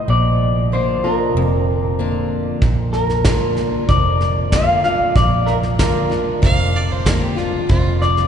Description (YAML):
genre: honky-tonk and classic country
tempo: 94 BPM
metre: 4/4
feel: straight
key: Bb major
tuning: A4 = 440 Hz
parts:
  - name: electric guitar through a small old amp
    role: melody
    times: 0.0-8.3 s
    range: Bb4 to F5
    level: -20 LUFS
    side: left 1 dB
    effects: none
  - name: picked acoustic archtop guitar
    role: accompaniment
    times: 0.0-8.3 s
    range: F2 to F4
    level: -23 LUFS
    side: left 2 dB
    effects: none
  - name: vintage muted fingered electric bass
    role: bass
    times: 0.1-8.3 s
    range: F1 to Bb1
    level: -20 LUFS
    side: right 1 dB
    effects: none
  - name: soft brush drum kit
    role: drums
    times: 2.6-8.3 s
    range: hi-hat, kick drum, snare drum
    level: -19 LUFS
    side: right 1 dB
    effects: none
  - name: clear fiddle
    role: second line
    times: 6.4-8.0 s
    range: F4 to F5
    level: -24 LUFS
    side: right 4 dB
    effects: none
room: wet cathedral reverb, RT60 6.7 s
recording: recorded in a church or concert hall, nothing above 11.0 kHz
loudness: -15 LUFS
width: side -8 dB against mid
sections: 0.0-8.3 A section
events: none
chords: 0.1 Bb; 7.7 N.C.